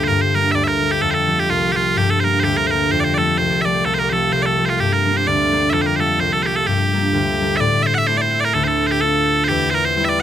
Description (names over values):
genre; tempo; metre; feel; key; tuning
celtic folk, Celtic polka; 128 BPM; 2/4; swing 57% on 8ths; G dorian; A4 = 440 Hz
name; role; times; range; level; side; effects
loud bright bagpipes; melody; 0.0-10.2 s; F4 to F#5; -17 LUFS; right 2 dB; tape echo
concert harp; accompaniment; 0.0-10.2 s; C2 to F4; -19 LUFS; left 2 dB; none
room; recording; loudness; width
light reverb; close, detailed microphones; -15 LUFS; side -10 dB against mid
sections
0.1-7.6 A section; 7.6-10.2 B section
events
none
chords
0.1 Gm; 1.0 F; 2.0 Gm; 2.9 F; 4.8 Gm; 5.7 Fadd9; 6.7 Gm; 7.6 Am; 8.5 Dm; 9.5 C/E